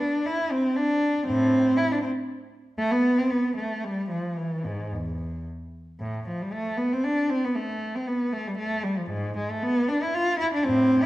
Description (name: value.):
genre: classical, baroque-style suite movement for unaccompanied cello.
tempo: 117 BPM.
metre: 3/4.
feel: rubato.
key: A minor.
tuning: A4 = 439 Hz.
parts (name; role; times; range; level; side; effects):
rich cello; solo; 0.0-11.1 s; E2 to F4; -23 LUFS; equal; none.
room: wet recital hall reverb, RT60 1.4 s.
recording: dark, warm production.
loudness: -23 LUFS.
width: side -16 dB against mid.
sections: 0.0-6.0 A section; 6.0-11.1 B section.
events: none.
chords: none.